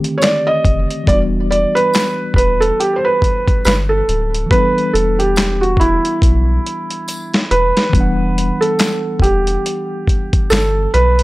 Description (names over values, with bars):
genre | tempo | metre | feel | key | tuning
lo-fi hip hop | 70 BPM | 4/4 | swing 58% on 16ths | E minor | A4 = 440 Hz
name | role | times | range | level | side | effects
mellow tine electric piano | accompaniment | 0.0-11.2 s | D3 to F#5 | -23 LUFS | left 2 dB | medium stereo tremolo, cassette tape, low-pass filter
dusty soul sampler-style drum kit | drums | 0.0-11.2 s | handclaps, hi-hat, kick drum, snare drum | -16 LUFS | equal | overdrive
felt-muted upright piano | melody | 0.2-11.2 s | E4 to Eb5 | -16 LUFS | right 2 dB | low-pass filter, tape echo
tambourine | percussion | 0.2-10.7 s | none | -30 LUFS | left 2 dB | none
soft dub sub bass | bass | 0.6-11.2 s | D1 to B1 | -17 LUFS | equal | none
room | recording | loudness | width
little or no reverb | dry, gritty hardware recording | -13 LUFS | side -19 dB against mid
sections
0.0-7.9 A section; 7.9-11.2 B section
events
drum fill 6.2-7.9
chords
0.0 F13; 1.1 Em7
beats
0.22 | 1.08 1.93 2.79 3.65 | 4.50 5.36 6.22 7.08 | 7.93 8.79 9.65 10.51